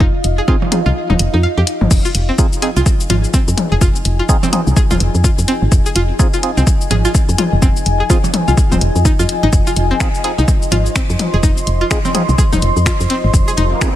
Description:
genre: minimal techno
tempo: 126 BPM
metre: 4/4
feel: swing 60% on 16ths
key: F minor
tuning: A4 = 440 Hz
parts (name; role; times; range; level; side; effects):
- string-like resonator pluck; riff; 0.0-13.6 s; C4 to F5; -22 LUFS; equal; chorus, sidechain pumping, tape echo
- woody FM bass; bass; 0.0-13.7 s; Eb1 to F2; -15 LUFS; equal; sidechain pumping
- electronic kick drum; drums; 0.0-13.9 s; none; -14 LUFS; equal; overdrive, studio reverb
- deep dark ambient pad; texture; 0.0-14.0 s; F4 to C6; -22 LUFS; left 1 dB; chorus, built-in reverb, sidechain pumping
- punchy analog drum machine; drums; 0.2-13.9 s; cabasa, crash cymbal, finger snaps, hi-hat; -22 LUFS; left 3 dB; overdrive, studio reverb
- percussive organ stab; stabs; 0.5-13.9 s; C4 to Ab4; -23 LUFS; right 3 dB; chorus, phaser, tape echo
- electronic percussion blips and toms; percussion; 0.6-12.6 s; none; -21 LUFS; equal; studio reverb, tape echo
- riser; sound effects; 13.4-14.0 s; none; -24 LUFS; left 1 dB; none
room: digital ambience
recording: none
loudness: -12 LUFS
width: side -13 dB against mid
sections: 0.0-14.0 A section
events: kick drops out 1.0-1.9; riser 13.4-14.0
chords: 0.0 Fm7

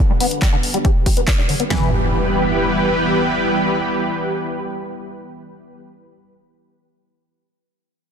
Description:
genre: uplifting trance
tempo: 140 BPM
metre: 4/4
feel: straight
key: E minor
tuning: A4 = 440 Hz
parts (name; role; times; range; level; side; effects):
- analog string pad; sustained chords; 0.1-5.8 s; D3 to B4; -20 LUFS; equal; ensemble chorus, sidechain pumping
- liquid acid bass; arpeggios; 0.1-1.9 s; D3 to G4; -24 LUFS; left 2 dB; phaser, analog chorus, sidechain pumping, dub echo
- punchy analog drum machine; drums; 0.2-1.7 s; handclaps, hi-hat; -25 LUFS; left 1 dB; none
- techno drum kit; drums; 0.4-1.8 s; kick drum, snare drum, toms; -17 LUFS; equal; none
- impact; sound effects; 1.7-5.8 s; none; -24 LUFS; equal; none
room: moderate lush hall reverb, RT60 2.2 s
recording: dense, heavily limited modern master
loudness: -16 LUFS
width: side -7 dB against mid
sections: 0.0-1.7 A section; 1.7-5.1 B section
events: filter sweep on acid bass 0.0-1.7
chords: 0.0 G; 1.7 Em

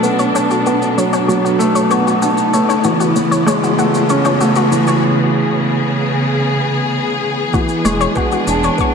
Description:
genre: piano and strings electronica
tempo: 96 BPM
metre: 4/4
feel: straight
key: unclear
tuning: A4 = 439 Hz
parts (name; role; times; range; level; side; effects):
- warm studio string section; sustained chords; 0.0-8.9 s; B2 to A4; -18 LUFS; equal; shimmer reverb
- felt-muted upright piano; riff; 0.0-8.9 s; E3 to D4; -16 LUFS; right 1 dB; digital delay, shimmer reverb
- shaker and woodblock; drums; 0.0-8.9 s; none; -28 LUFS; left 2 dB; high-pass filter on perc, high-pass filter on room
- riser; sound effects; 0.0-5.0 s; none; -24 LUFS; equal; none
- analog pluck; arpeggios; 0.2-8.8 s; F#4 to C#5; -20 LUFS; left 4 dB; chorus, sidechain pumping, digital delay, shimmer reverb
- dark detuned saw bass; bass; 0.3-8.7 s; E1 to C#2; -28 LUFS; left 1 dB; none
- electronic kick drum; drums; 7.5-8.9 s; none; -19 LUFS; left 1 dB; none
room: wet concert hall reverb, RT60 2.2 s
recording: none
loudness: -12 LUFS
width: side -6 dB against mid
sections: 0.0-7.5 A section; 7.5-8.9 B section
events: build-up 0.0-7.5; riser 0.0-5.0; filter sweep on synth arpeggio sound 0.0-7.5; break 5.0-7.5; drop 7.5-8.9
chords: 0.0 Bm7; 2.5 Amaj7; 7.5 E7

